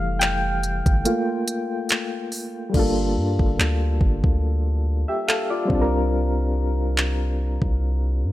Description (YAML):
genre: contemporary R&B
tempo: 71 BPM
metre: 4/4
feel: swing 54% on 16ths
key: G minor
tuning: A4 = 440 Hz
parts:
  - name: soft electric-piano-like synth keys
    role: accompaniment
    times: 0.0-8.3 s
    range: E3 to G5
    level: -24 LUFS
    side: left 1 dB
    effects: chorus, tremolo
  - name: long sustained 808-style bass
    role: bass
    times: 0.0-8.3 s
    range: F1 to G2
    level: -23 LUFS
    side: equal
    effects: none
  - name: smooth R&B drum kit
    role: drums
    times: 0.2-7.8 s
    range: crash cymbal, handclaps, hi-hat, kick drum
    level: -22 LUFS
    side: equal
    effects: none
room: little or no reverb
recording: none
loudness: -20 LUFS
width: side -15 dB against mid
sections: 0.0-2.7 A section; 2.7-8.3 B section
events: synth keys solo 0.0-2.7; break 1.1-2.7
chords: 0.0 Fmaj9; 1.1 Gm9; 5.7 C9sus4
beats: 0.21 1.05 1.90 | 2.74 3.59 4.43 5.28 | 6.12 6.97 7.81